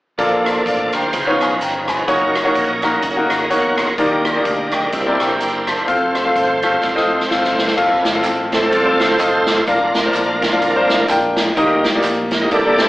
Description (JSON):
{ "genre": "uptempo gospel", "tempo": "126 BPM", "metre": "4/4", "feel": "swing 58% on 8ths", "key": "Bb major", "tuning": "A4 = 442 Hz", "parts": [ { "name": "bright upright piano", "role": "accompaniment", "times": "0.2-12.9 s", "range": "Bb2 to C6", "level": "-17 LUFS", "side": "left 1 dB", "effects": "none" }, { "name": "bright tonewheel organ", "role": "sustained chords", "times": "0.2-12.9 s", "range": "E3 to Gb5", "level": "-18 LUFS", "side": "right 1 dB", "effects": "chorus vibrato, slow rotary speaker" }, { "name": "fingered electric bass", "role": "bass", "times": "0.2-12.9 s", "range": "F1 to E2", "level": "-32 LUFS", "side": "equal", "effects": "none" }, { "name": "swinging big-band drum kit", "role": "drums", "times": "0.2-12.9 s", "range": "crash cymbal, hi-hat, kick drum, rim click, snare drum", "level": "-21 LUFS", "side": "equal", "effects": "none" }, { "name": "tambourine and handclaps", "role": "percussion", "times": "7.8-12.9 s", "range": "none", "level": "-30 LUFS", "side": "right 2 dB", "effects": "none" } ], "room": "wet studio reverb, RT60 0.5 s", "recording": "band playing live in one room, AM radio sound", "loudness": "-14 LUFS", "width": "side -17 dB against mid", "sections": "0.2-7.8 A section; 7.8-12.9 B section", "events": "tonewheel organ fill 3.0-4.0; drum fill 6.8-7.8; tonewheel organ solo 7.8-12.9", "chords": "0.2 Bbmaj7; 1.1 Db9; 2.1 Gb6; 4.0 Ebmaj7; 4.9 C9; 5.9 F; 9.7 Bb/F; 11.6 Eb" }